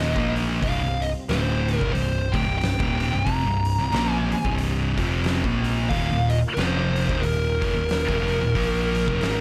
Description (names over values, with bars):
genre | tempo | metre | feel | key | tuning
stoner and doom metal | 91 BPM | 4/4 | swing 59% on 8ths | C minor | A4 = 440 Hz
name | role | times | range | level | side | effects
fuzz lead guitar | melody | 0.0-9.4 s | Bb4 to Bb5 | -30 LUFS | equal | distortion, delay
tonewheel organ | sustained chords | 0.0-9.4 s | C3 to F4 | -40 LUFS | equal | none
thick fuzz guitar | riff | 0.0-9.4 s | C2 to Bb3 | -30 LUFS | equal | distortion
thick fuzz guitar | riff | 0.0-9.4 s | C2 to Bb3 | -30 LUFS | equal | distortion
overdriven picked electric bass | bass | 0.0-9.4 s | C1 to Bb1 | -30 LUFS | equal | none
oversized low-tuned drum kit | drums | 0.2-9.4 s | hi-hat, kick drum, snare drum | -31 LUFS | equal | none
room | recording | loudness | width
small room ambience | none | -23 LUFS | mono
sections
0.0-9.4 A section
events
none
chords
0.0 Eb5; 0.6 Cm; 5.9 Eb5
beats
| 0.62 1.28 1.94 2.60 | 3.27 3.93 4.59 5.25 | 5.91 6.57 7.23 7.89 | 8.56 9.22